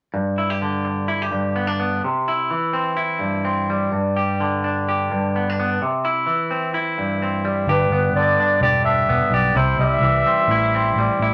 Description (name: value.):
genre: highlife guitar band.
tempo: 127 BPM.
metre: 4/4.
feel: swing 54% on 16ths.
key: G major.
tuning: A4 = 440 Hz.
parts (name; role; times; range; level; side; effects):
semi-hollow electric guitar; accompaniment; 0.1-11.3 s; G2 to G4; -22 LUFS; equal; none.
breathy clarinet; melody; 7.7-11.2 s; B4 to E5; -21 LUFS; equal; none.
fingered electric bass; bass; 7.7-11.3 s; E1 to C2; -24 LUFS; equal; none.
room: wet studio ambience, RT60 0.5 s.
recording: none.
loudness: -20 LUFS.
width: mono.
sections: 0.1-7.7 A section; 7.7-11.3 B section.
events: none.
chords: 0.1 G; 2.0 C; 3.9 G; 5.8 C; 7.7 G; 9.6 C.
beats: | 0.13 0.60 1.07 1.54 | 2.01 2.48 2.96 3.43 | 3.90 4.37 4.84 5.31 | 5.78 6.25 6.73 7.20 | 7.67 8.14 8.61 9.08 | 9.55 10.03 10.50 10.97.